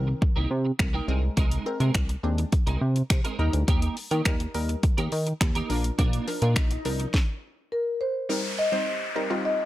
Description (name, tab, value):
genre	dance-pop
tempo	104 BPM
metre	4/4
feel	straight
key	Eb major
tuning	A4 = 445 Hz
part	wide unison pluck	accompaniment	0.0-9.7 s	Eb3 to C5	-32 LUFS	equal	sidechain pumping
part	chorused synth bass	bass	0.0-7.1 s	Bb1 to Eb3	-25 LUFS	equal	sidechain pumping
part	twelve-string electric guitar	riff	0.1-7.0 s	Ab3 to Bb4	-32 LUFS	right 4 dB	ensemble chorus
part	house drum kit	drums	0.2-7.3 s	finger snaps, hi-hat, kick drum, snare drum	-24 LUFS	equal	overdrive
part	swell and downlifter	sound effects	6.2-9.7 s	none	-33 LUFS	left 2 dB	none
part	marimba with soft mallets	melody	7.7-9.7 s	Bb4 to Eb5	-26 LUFS	left 1 dB	analog delay
room	digital ambience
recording	dry, gritty hardware recording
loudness	-23 LUFS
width	side -15 dB against mid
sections	0.0-8.3 A section; 8.3-9.7 B section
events	swell 6.2-8.3; stop 7.1-8.3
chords	0.0 Cm7; 1.1 Abadd9/C; 3.4 Eb; 5.7 Bb; 8.3 Cm7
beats	0.22 0.80 | 1.37 1.95 2.53 3.10 | 3.68 4.26 4.83 5.41 | 5.99 6.57 7.14 7.72 | 8.30 8.87 9.45